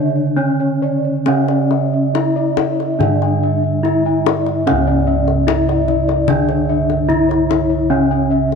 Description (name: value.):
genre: Javanese gamelan.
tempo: 65-74 BPM.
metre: 4/4.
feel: straight.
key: unclear.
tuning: A4 = 439 Hz.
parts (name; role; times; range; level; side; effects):
gamelan-type bronze metallophone; melody; 0.0-8.6 s; C#4 to E4-30c; -18 LUFS; left 3 dB; none.
gamelan-type bronze metallophone; accompaniment; 0.0-8.6 s; C#3 to D3+20c; -20 LUFS; right 12 dB; none.
gamelan-type bossed gongs; arpeggios; 0.0-8.5 s; C#5 to G#5-30c; -22 LUFS; left 11 dB; none.
gamelan-type bronze metallophone; arpeggios; 0.0-8.6 s; C#5 to E5-30c; -25 LUFS; right 8 dB; none.
gamelan-type bossed gongs; bass; 0.0-8.6 s; C#2 to D4+20c; -21 LUFS; equal; none.
kendang; percussion; 1.3-8.6 s; none; -22 LUFS; left 13 dB; none.
room: moderate plate reverb, RT60 2.3 s.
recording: 1960s-style stereo with parts hard left and right, tape saturation.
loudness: -13 LUFS.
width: side -6 dB against mid.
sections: 0.0-4.7 A section; 4.7-8.6 B section.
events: none.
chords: none.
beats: 0.36 | 1.27 2.15 3.01 3.85 | 4.67 5.48 6.29 7.10 | 7.91.